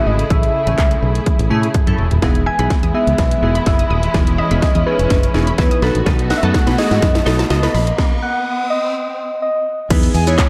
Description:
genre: dance-pop.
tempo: 125 BPM.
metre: 4/4.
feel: straight.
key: E major.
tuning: A4 = 440 Hz.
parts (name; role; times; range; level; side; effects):
soft struck synth lead; melody; 0.0-9.9 s; B4 to G#5; -23 LUFS; equal; chorus, diffuse ambient delay.
glassy digital keys; accompaniment; 0.0-10.5 s; A3 to C#5; -25 LUFS; equal; chorus, sidechain pumping.
muted studio string section; sustained chords; 0.0-10.5 s; C#3 to G#4; -26 LUFS; equal; sidechain pumping.
fingered electric bass; bass; 0.1-10.4 s; D#1 to B2; -20 LUFS; equal; sidechain pumping.
house drum kit; drums; 0.2-10.5 s; crash cymbal, handclaps, hi-hat, kick drum, shaker, snare drum, toms; -19 LUFS; equal; overdrive.
unison pluck; arpeggios; 2.2-7.8 s; D#3 to D#6; -32 LUFS; equal; none.
riser; sound effects; 5.6-8.9 s; none; -32 LUFS; equal; none.
direct-recorded clean electric guitar; riff; 6.1-7.9 s; D#4 to B4; -30 LUFS; equal; analog chorus.
silver concert flute; melody; 10.1-10.3 s; G#5; -26 LUFS; equal; none.
room: moderate plate reverb, RT60 1.9 s.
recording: dreamy mix soaked in reverb.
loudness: -16 LUFS.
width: mono.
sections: 0.0-2.2 A section; 2.2-9.9 B section.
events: drum fill 1.3-2.2, 2.2-8.0; build-up 2.2-9.9; riser 5.6-9.9; stop 8.0-9.9.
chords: 0.0 Amaj7; 2.2 Emaj7; 5.8 B7; 9.7 N.C.; 9.9 Emaj7.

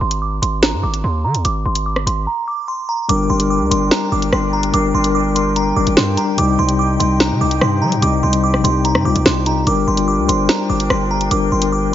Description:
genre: hip hop, drill.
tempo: 146 BPM.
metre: 4/4.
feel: half-time.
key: G phrygian.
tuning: A4 = 440 Hz.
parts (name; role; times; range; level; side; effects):
glassy synth bell; melody; 0.0-11.9 s; Bb5 to D6; -20 LUFS; right 3 dB; chorus, low-pass filter, digital delay.
distorted 808-style bass; bass; 0.0-11.9 s; G1 to G3; -20 LUFS; right 1 dB; distortion.
drill drum kit; drums; 0.1-11.7 s; hi-hat, rim click, snare drum; -18 LUFS; equal; overdrive.
mellow tine electric piano; accompaniment; 3.1-11.9 s; C3 to C5; -18 LUFS; left 4 dB; medium stereo tremolo, low-pass filter.
large flute ensemble; sustained chords; 3.1-11.9 s; D4 to G5; -26 LUFS; left 2 dB; none.
room: light reverb, digital ambience.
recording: nothing above 7.6 kHz.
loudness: -14 LUFS.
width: side -11 dB against mid.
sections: 0.0-11.9 A section.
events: filter sweep 0.0-3.1; break 2.3-3.1.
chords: 0.0 Ab5; 3.1 Gm; 6.4 Cm; 9.7 Gm.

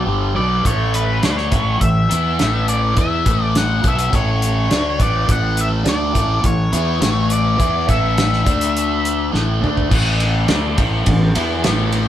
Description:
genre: psychedelic rock.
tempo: 104 BPM.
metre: 4/4.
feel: straight.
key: A mixolydian.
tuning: A4 = 440 Hz.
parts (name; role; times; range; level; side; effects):
octave-fuzz lead guitar; melody; 0.0-9.3 s; B4 to F#5; -21 LUFS; left 1 dB; distortion.
biting overdriven guitar; riff; 0.0-12.1 s; G2 to E4; -20 LUFS; left 1 dB; phaser.
fuzz fingered electric bass; bass; 0.0-12.1 s; G1 to E2; -20 LUFS; equal; overdrive.
cloth-damped thuddy drum kit; drums; 0.7-12.1 s; crash cymbal, hi-hat, kick drum, ride cymbal, snare drum, toms; -19 LUFS; equal; none.
room: light reverb.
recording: band playing live in one room.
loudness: -14 LUFS.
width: side -11 dB against mid.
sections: 0.0-9.9 A section; 9.9-12.1 B section.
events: drum fill 9.3-9.9.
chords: 0.1 G5; 0.7 A; 8.5 D5; 9.3 A5.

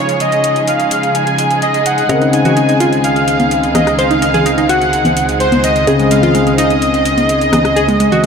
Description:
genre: progressive house.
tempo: 127 BPM.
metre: 4/4.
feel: straight.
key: unclear.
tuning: A4 = 440 Hz.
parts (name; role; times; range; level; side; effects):
soft supersaw; melody; 0.0-8.3 s; C5 to Ab5; -14 LUFS; right 1 dB; cassette tape, ping-pong delay.
rich studio string section; sustained chords; 0.0-8.3 s; Db2 to Ab4; -17 LUFS; right 2 dB; vintage 12-bit sampler grit, low-pass filter.
warm grand piano; stabs; 0.0-8.3 s; Db3 to Eb5; -17 LUFS; left 4 dB; low-pass filter, ping-pong delay.
electronic hi-hat; drums; 0.1-8.3 s; none; -25 LUFS; equal; overdrive.
glassy wavetable pluck; arpeggios; 2.1-8.3 s; Ab3 to C5; -17 LUFS; equal; chorus, ping-pong delay.
electronic congas and rim click; percussion; 2.5-8.2 s; none; -17 LUFS; left 1 dB; none.
room: light reverb, digital ambience.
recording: none.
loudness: -10 LUFS.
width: side -6 dB against mid.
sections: 0.0-8.3 A section.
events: none.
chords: 0.0 Dbadd9; 2.1 Ab/Db.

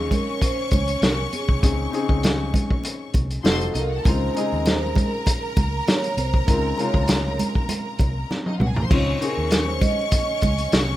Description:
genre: lush 1970s-style soul.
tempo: 99 BPM.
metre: 4/4.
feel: swing 54% on 16ths.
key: Db major.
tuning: A4 = 440 Hz.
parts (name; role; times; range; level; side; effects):
vibraphone with soft mallets; melody; 0.0-10.7 s; Ab4 to Eb5; -28 LUFS; right 2 dB; none.
clear symphonic string section; second line; 0.0-11.0 s; Db4 to Db6; -29 LUFS; equal; none.
warm grand piano; accompaniment; 0.0-11.0 s; C3 to A4; -29 LUFS; left 4 dB; none.
vintage muted fingered electric bass; bass; 0.0-11.0 s; F1 to Eb2; -26 LUFS; equal; none.
vintage drum kit; drums; 0.1-10.9 s; crash cymbal, hi-hat, kick drum, snare drum, toms; -21 LUFS; equal; none.
congas; percussion; 0.1-10.9 s; none; -30 LUFS; right 2 dB; none.
room: little or no reverb.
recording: rough home demo mix.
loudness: -19 LUFS.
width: side -14 dB against mid.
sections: 0.0-11.0 A section.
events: vibraphone solo 0.0-11.0; drum fill 8.3-8.9.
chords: 0.0 Dbmaj9; 3.4 F7b9; 4.1 Bbm11.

